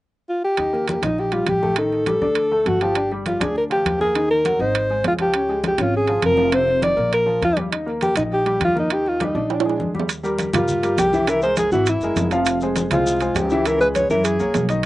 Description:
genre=Afro-Cuban jazz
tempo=202 BPM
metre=4/4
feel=straight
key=Eb major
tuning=A4 = 441 Hz
part: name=mellow alto saxophone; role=melody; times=0.3-14.7 s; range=D4 to D5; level=-19 LUFS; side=equal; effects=none
part: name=warm baby grand piano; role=accompaniment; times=0.6-14.9 s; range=C3 to F5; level=-25 LUFS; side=left 1 dB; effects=none
part: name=upright bass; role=bass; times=0.6-14.9 s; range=F1 to G2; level=-26 LUFS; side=right 1 dB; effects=none
part: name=congas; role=percussion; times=0.6-14.7 s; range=none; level=-28 LUFS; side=left 2 dB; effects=none
part: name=timbales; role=percussion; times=0.6-14.9 s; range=none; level=-25 LUFS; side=right 8 dB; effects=none
part: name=maracas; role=percussion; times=10.1-14.8 s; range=none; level=-35 LUFS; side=left 4 dB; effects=none
room=little or no reverb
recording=recorded outdoors, with no room sound, nothing above 10.3 kHz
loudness=-17 LUFS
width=side -16 dB against mid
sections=0.6-10.1 A section; 10.1-14.9 B section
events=drum fill 9.5-10.1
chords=0.0 N.C.; 0.6 Eb; 1.8 Ebmaj7#11/A; 2.4 D5; 3.0 Gm7; 4.2 Ebm; 4.7 Ab; 5.3 Db; 6.5 F5; 7.1 Bb5; 7.7 Ebmaj7; 9.5 Bb7; 10.1 Ebadd9; 11.3 Caug7; 12.5 Fmadd9; 13.7 Dbm7; 14.3 Gb9

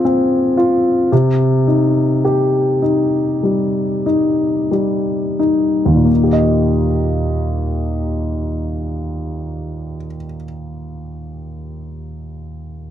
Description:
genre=pop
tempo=42-57 BPM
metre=4/4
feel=straight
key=Eb major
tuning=A4 = 442 Hz
part: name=dark baby grand piano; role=accompaniment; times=0.0-12.9 s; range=Eb2 to Eb5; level=-15 LUFS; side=left 1 dB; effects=none
room=light reverb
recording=dry, close 1970s-style studio recording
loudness=-14 LUFS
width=side -10 dB against mid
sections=0.0-6.1 A section; 6.1-11.7 B section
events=slowing down 0.0-6.1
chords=0.0 Fm; 1.1 Cm; 6.1 Eb

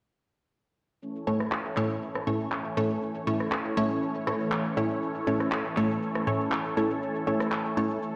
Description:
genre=progressive house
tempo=120 BPM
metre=4/4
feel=straight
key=A major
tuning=A4 = 439 Hz
part: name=filtered supersaw swell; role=sustained chords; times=1.0-8.2 s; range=E3 to C#5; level=-34 LUFS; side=equal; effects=phaser
part: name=electronic cabasa, rim click and handclaps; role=drums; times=1.0-8.1 s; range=none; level=-36 LUFS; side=equal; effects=low-pass filter on perc, low-pass filter on snare, low-pass filter on room
part: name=unison pluck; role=stabs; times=1.3-8.0 s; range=A2 to C#5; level=-31 LUFS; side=equal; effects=tape echo
room=moderate lush hall reverb, RT60 2.1 s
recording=played on a big sound system in a bare room, stone room reverb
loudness=-29 LUFS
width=mono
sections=1.0-8.2 A section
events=none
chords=1.0 A

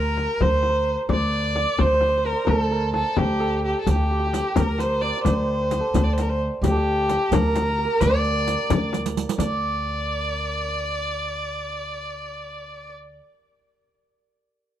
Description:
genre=Persian modal ensemble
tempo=87 BPM (dotted quarters)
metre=6/8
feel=straight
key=D dastgah shur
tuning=A4 = 438 Hz
part: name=warm violin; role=melody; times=0.0-12.9 s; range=G4 to D5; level=-24 LUFS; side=equal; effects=none
part: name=santur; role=second line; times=0.0-13.2 s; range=G4 to D5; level=-28 LUFS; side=right 4 dB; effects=none
part: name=upright bass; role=bass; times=0.0-13.2 s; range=D2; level=-25 LUFS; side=equal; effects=none
part: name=frame drum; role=percussion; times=0.2-9.6 s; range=none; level=-25 LUFS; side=left 5 dB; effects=none
part: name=riq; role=percussion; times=3.9-9.6 s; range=none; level=-30 LUFS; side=right 8 dB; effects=none
room=small room reverb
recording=dry, close 1970s-style studio recording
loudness=-20 LUFS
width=side -11 dB against mid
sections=0.0-9.4 A section; 9.4-12.2 B section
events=drum fill 8.9-9.4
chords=none

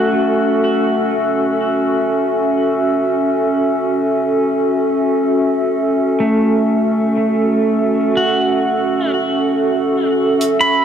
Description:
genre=ambient dub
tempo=free time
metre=none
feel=none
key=F# minor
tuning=A4 = 440 Hz
part: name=warbly tape-like pad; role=sustained chords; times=0.0-10.8 s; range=C#4 to E5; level=-15 LUFS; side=equal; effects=chorus, built-in reverb
part: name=pedal steel guitar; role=arpeggios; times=0.0-1.6, 6.2-10.8 s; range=A3 to B5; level=-18 LUFS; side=right 1 dB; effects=low-pass filter, tape echo
part: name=hi-hat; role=drums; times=10.4-10.5 s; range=none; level=-24 LUFS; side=right 3 dB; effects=low-pass filter on hats, low-pass filter on room
room=moderate huge ambient reverb, RT60 6.5 s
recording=none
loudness=-14 LUFS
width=side -8 dB against mid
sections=0.0-10.4 A section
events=filter sweep on pedal steel guitar 0.0-10.4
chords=0.0 F#m7

